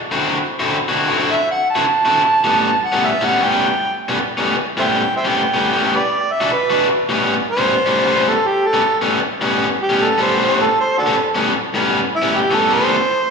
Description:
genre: blues.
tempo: 103 BPM.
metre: 4/4.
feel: swing 64% on 8ths.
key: A mixolydian.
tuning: A4 = 440 Hz.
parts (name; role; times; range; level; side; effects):
overdriven electric guitar; riff; 0.1-13.0 s; A2 to F#4; -17 LUFS; left 2 dB; slapback echo.
overdriven harmonica; melody; 1.3-13.3 s; D4 to A5; -17 LUFS; right 2 dB; slapback echo.
room: moderate plate reverb, RT60 3.4 s.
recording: live gig heard through the venue's PA, recital hall reverb.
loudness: -14 LUFS.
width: side -5 dB against mid.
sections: 0.0-7.1 A section; 7.1-13.3 B section.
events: harmonica solo 7.1-13.3.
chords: 0.1 D9; 2.4 A9; 5.9 E9; 7.1 A9.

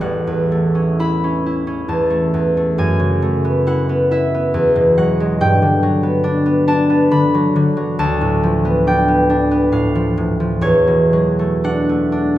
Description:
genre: classical, solo harp piece.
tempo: 56-71 BPM.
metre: 3/4.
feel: rubato.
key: A mixolydian.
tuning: A4 = 440 Hz.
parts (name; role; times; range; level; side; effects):
concert harp; solo; 0.0-12.4 s; A1 to B5; -14 LUFS; equal; none.
room: wet recital hall reverb, RT60 1.7 s.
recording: heard from further back in the room.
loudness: -13 LUFS.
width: side -14 dB against mid.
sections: 0.0-12.4 A section.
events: none.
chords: 0.0 A6; 2.8 F#m11; 4.5 E69; 5.4 Gmaj7; 8.0 Dm6; 10.6 E9sus4.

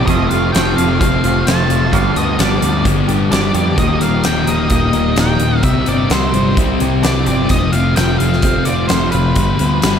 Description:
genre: rock, shoegaze and dream pop.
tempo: 129 BPM.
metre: 4/4.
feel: straight.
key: unclear.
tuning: A4 = 440 Hz.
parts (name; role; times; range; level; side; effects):
octave-fuzz lead guitar; melody; 0.0-10.0 s; Cb5 to A5; -20 LUFS; equal; distortion, tape echo.
direct-recorded clean electric guitar; arpeggios; 0.0-10.0 s; Eb2 to G4; -24 LUFS; right 8 dB; wide subtle chorus, tape echo.
thick fuzz guitar; riff; 0.0-10.0 s; Eb2 to C4; -17 LUFS; left 5 dB; distortion, wide subtle chorus.
twangy electric guitar; riff; 0.0-10.0 s; Eb2 to G4; -23 LUFS; right 5 dB; reverse reverb.
growling picked electric bass; bass; 0.0-10.0 s; Eb1 to F2; -19 LUFS; right 1 dB; overdrive.
huge arena drum kit; drums; 0.1-9.9 s; hi-hat, kick drum, snare drum; -19 LUFS; equal; none.
room: wet huge ambient reverb, RT60 7.7 s.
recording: dreamy mix soaked in reverb.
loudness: -12 LUFS.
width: side -8 dB against mid.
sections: 0.0-10.0 A section.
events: none.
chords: 0.1 F; 1.9 G; 3.8 Eb; 5.6 C; 7.5 F; 9.4 G.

